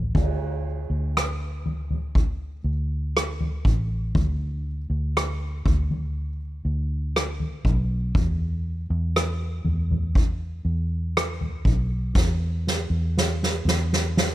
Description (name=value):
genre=pop ballad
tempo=60 BPM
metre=4/4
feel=straight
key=unclear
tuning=A4 = 440 Hz
part: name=vintage muted fingered electric bass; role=bass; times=0.0-14.3 s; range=A1 to E2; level=-25 LUFS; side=equal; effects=none
part: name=soft-mallet drum kit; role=drums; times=0.1-14.3 s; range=crash cymbal, kick drum, rim click, snare drum, toms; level=-24 LUFS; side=equal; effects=none
room=little or no reverb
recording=none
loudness=-22 LUFS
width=side -15 dB against mid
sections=0.2-14.3 A section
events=drum fill 0.0, 12.2-14.3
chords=none